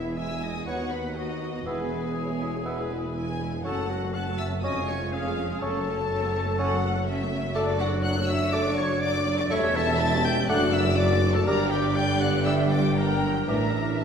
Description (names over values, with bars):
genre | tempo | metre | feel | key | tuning
classical, dramatic, fast romantic movement for symphony orchestra | 122 BPM | 4/4 | rubato | D major from 7.6 s | A4 = 440 Hz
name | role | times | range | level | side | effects
warm symphonic violin section | melody | 0.0-14.0 s | E5 to A6 | -34 LUFS | left 3 dB | none
clear clarinet | second line | 0.0-14.0 s | E4 to A5 | -33 LUFS | left 2 dB | none
mellow hollow silver concert flute | second line | 0.0-14.0 s | E4 to A5 | -34 LUFS | left 2 dB | none
warm symphonic violin section | second line | 0.0-14.0 s | B4 to A5 | -33 LUFS | left 2 dB | none
rich symphonic viola section | accompaniment | 0.0-14.0 s | E3 to G#4 | -34 LUFS | right 1 dB | none
mellow French horn section | sustained chords | 0.0-14.0 s | A3 to G4 | -31 LUFS | left 1 dB | none
rich symphonic cello section | bass | 0.0-14.0 s | D#2 to A2 | -33 LUFS | right 2 dB | none
rich symphonic double bass section | bass | 0.0-14.0 s | E1 to D#2 | -32 LUFS | right 2 dB | none
warm tuba | bass | 0.0-14.0 s | E1 to D#2 | -32 LUFS | right 1 dB | none
warm oboe | second line | 0.7-13.7 s | C#5 to F#5 | -38 LUFS | right 1 dB | none
warm bassoon | accompaniment | 0.7-13.7 s | E3 to C#4 | -34 LUFS | equal | none
room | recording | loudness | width
wet scoring stage reverb, RT60 1.5 s | heard from further back in the room | -23 LUFS | side -7 dB against mid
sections
0.0-14.0 A section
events
none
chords
0.0 E; 0.7 B/D#; 1.7 E; 3.6 F#m; 4.6 C#/E#; 5.6 F#m; 7.6 D/F#; 9.5 A7/E; 10.5 D/F#; 11.5 Gm; 13.5 Asus4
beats
0.17 0.67 1.17 | 1.67 2.16 2.66 3.16 | 3.65 4.14 4.64 5.13 | 5.62 6.11 6.59 7.08 | 7.56 8.04 8.53 9.02 | 9.51 10.00 10.49 10.98 | 11.47 11.96 12.46 12.97 | 13.48 14.01